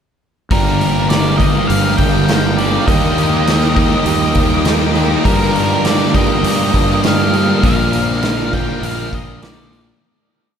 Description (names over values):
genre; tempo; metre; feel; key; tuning
rock, shoegaze and dream pop; 101 BPM; 4/4; straight; G minor; A4 = 440 Hz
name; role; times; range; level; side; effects
octave-fuzz lead guitar; melody; 0.5-9.8 s; Bb4 to G5; -20 LUFS; equal; distortion, diffuse ambient delay
string machine, violins; sustained chords; 0.5-10.0 s; Bb4 to D6; -24 LUFS; equal; ensemble chorus
direct-recorded clean electric guitar; arpeggios; 0.5-10.0 s; F3 to G4; -28 LUFS; right 6 dB; none
biting overdriven guitar; riff; 0.5-10.0 s; G2 to G4; -20 LUFS; right 8 dB; reverse reverb
thick fuzz guitar; riff; 0.5-10.0 s; G2 to Eb4; -19 LUFS; left 9 dB; distortion, analog chorus
fuzz fingered electric bass; bass; 0.5-9.9 s; G1 to G2; -19 LUFS; equal; overdrive
raw garage drum kit; drums; 0.5-9.9 s; hi-hat, kick drum, snare drum; -18 LUFS; equal; none
room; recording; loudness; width
moderate huge ambient reverb, RT60 7.9 s; dreamy mix soaked in reverb; -12 LUFS; side -8 dB against mid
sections
0.5-10.0 verse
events
fade-out 7.6-10.0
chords
0.5 Gm7; 2.9 Ebmaj7; 5.3 Gm7; 7.6 Bb